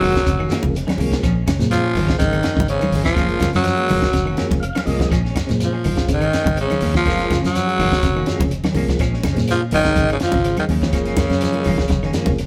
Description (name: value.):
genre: afrobeat.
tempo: 124 BPM.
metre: 4/4.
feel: straight.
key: Bb minor.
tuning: A4 = 440 Hz.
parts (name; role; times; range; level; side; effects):
growling tenor saxophone; melody; 0.0-12.4 s; Db3 to Gb3; -23 LUFS; equal; none.
trombone with bucket mute; second line; 0.0-12.4 s; Db4 to Gb4; -31 LUFS; equal; none.
mellow tonewheel organ; accompaniment; 0.0-12.4 s; Db3 to F5; -30 LUFS; equal; slow rotary speaker.
electric guitar at the edge of break-up; arpeggios; 0.0-12.4 s; Db3 to F3; -28 LUFS; equal; spring reverb.
semi-hollow electric guitar; stabs; 0.0-12.3 s; F3 to Db4; -33 LUFS; equal; tremolo.
fingered electric bass; bass; 0.0-12.5 s; F1 to Bb2; -25 LUFS; equal; none.
compact cocktail drum kit; drums; 0.0-12.5 s; hi-hat, kick drum, snare drum; -25 LUFS; equal; none.
claves; percussion; 0.0-12.1 s; none; -42 LUFS; equal; none.
congas; percussion; 0.0-12.4 s; none; -28 LUFS; equal; none.
shekere; percussion; 0.0-12.5 s; none; -32 LUFS; equal; none.
room: light reverb.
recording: band playing live in one room.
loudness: -18 LUFS.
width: mono.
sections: 0.0-12.5 A section.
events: tonewheel organ fill 4.4-5.1; drum fill 4.8-5.1.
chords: 0.0 Gbmaj7; 1.2 Bbm7; 3.2 Gbmaj7; 5.1 Bbm7; 7.1 Gbmaj7; 9.0 Bbm7; 10.9 Gbmaj7.